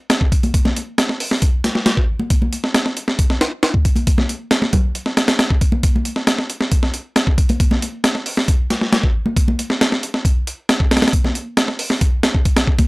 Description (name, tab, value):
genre	breakbeat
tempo	136 BPM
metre	4/4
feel	straight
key	none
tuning	none
part	breakbeat sampler-style drum kit	drums	0.1-12.9 s	hi-hat, kick drum, snare drum	-15 LUFS	equal	none
part	congas	percussion	0.4-12.9 s	none	-22 LUFS	equal	none
room	little or no reverb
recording	dry, gritty hardware recording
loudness	-15 LUFS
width	side -24 dB against mid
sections	0.0-12.9 A section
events	none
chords	none